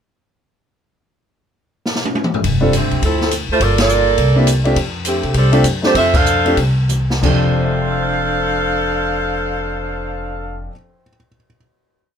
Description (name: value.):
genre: jazz, big band swing.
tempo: 176-207 BPM.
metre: 4/4.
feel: swing 62% on 8ths.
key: F major.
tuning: A4 = 441 Hz.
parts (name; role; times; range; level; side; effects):
open jazz drum kit; drums; 1.9-7.3 s; crash cymbal, hi-hat, kick drum, ride cymbal, snare drum, toms; -20 LUFS; left 1 dB; none.
upright bass; bass; 2.4-10.7 s; F1 to C3; -18 LUFS; equal; none.
clear concert grand piano; accompaniment; 2.6-11.6 s; F2 to C7; -20 LUFS; left 1 dB; none.
warm saxophone section; melody; 2.8-10.7 s; D3 to F5; -17 LUFS; right 2 dB; none.
room: light reverb.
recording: minimal, uncompressed stereo recording.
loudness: -14 LUFS.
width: side -8 dB against mid.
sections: 1.3-2.4 pickup bar; 2.4-7.2 A section; 7.2-10.0 final chord.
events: drum fill 1.9-2.4, 6.9-7.2; band accent 3.7, 6.1; slowing down 4.8-7.2.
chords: 1.3 N.C.; 2.4 F69; 3.0 Dm9; 3.6 Gm9; 4.2 C7; 4.8 F69.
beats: | 1.28 1.57 1.86 2.15 | 2.44 2.73 3.02 3.31 | 3.60 3.89 4.18 4.47 | 4.76 5.05 5.35 5.65 | 5.95 6.26 6.57 6.90 | 7.23 7.57 7.91 8.25 | 8.59 8.93 9.27 9.61.